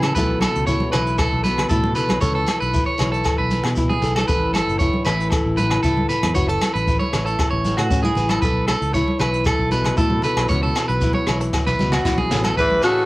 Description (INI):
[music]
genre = highlife guitar band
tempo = 116 BPM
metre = 4/4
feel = straight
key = unclear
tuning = A4 = 440 Hz
[part]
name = flamenco guitar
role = accompaniment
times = 0.0-13.1 s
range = A2 to B4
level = -24 LUFS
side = left 2 dB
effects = cassette tape
[part]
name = electric guitar at the edge of break-up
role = arpeggios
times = 0.0-13.1 s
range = F#4 to C#5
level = -23 LUFS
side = right 2 dB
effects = cassette tape, tape echo
[part]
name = fingered electric bass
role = bass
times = 0.0-12.8 s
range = F#1 to C#3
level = -24 LUFS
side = equal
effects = none
[part]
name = jazz brush drum kit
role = drums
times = 0.0-13.0 s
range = hi-hat, kick drum, rim click, snare drum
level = -24 LUFS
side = equal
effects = none
[part]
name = agogo bells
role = percussion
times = 0.0-13.0 s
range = none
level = -30 LUFS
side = left 1 dB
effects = none
[part]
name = congas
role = percussion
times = 0.0-12.8 s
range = none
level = -27 LUFS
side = right 1 dB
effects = none
[part]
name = shekere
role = percussion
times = 0.2-12.9 s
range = none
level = -33 LUFS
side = left 1 dB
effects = none
[part]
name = growling alto saxophone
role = melody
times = 12.6-13.1 s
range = F#4 to B4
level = -17 LUFS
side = equal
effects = cassette tape
[part]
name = growling tenor saxophone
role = second line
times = 12.6-13.1 s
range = C#3 to E3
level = -24 LUFS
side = left 1 dB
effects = cassette tape
[sound]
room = light reverb, small room ambience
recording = home recording on cassette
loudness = -17 LUFS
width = side -19 dB against mid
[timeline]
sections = 0.0-12.6 A section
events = drum fill 11.5-12.6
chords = 0.2 Esus4/B; 4.3 Aadd9; 8.4 Esus4/B